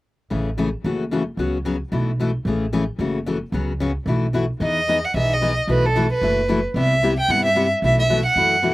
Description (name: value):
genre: acoustic string swing (jazz manouche)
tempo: 224 BPM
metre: 4/4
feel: swing 56% on 8ths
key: unclear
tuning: A4 = 440 Hz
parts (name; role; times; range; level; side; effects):
- picked steel-string acoustic guitar; accompaniment; 0.3-8.7 s; B2 to G#4; -22 LUFS; left 3 dB; none
- upright bass; bass; 0.3-8.7 s; F#1 to G2; -23 LUFS; right 1 dB; none
- warm violin; melody; 4.6-8.7 s; A4 to G5; -19 LUFS; right 1 dB; slapback echo
room: little or no reverb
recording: recorded outdoors, with no room sound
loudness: -18 LUFS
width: side -18 dB against mid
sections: 0.3-4.6 A section; 4.6-8.7 B section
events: none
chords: 0.3 Amaj7; 0.8 F#m7; 1.4 C#7sus4; 1.9 B7sus4; 2.5 Amaj7; 3.0 F#m7; 3.5 C#7sus4; 4.1 B7sus4; 4.6 Emaj7; 5.7 B7sus4; 6.8 Cmaj7; 7.8 B7sus4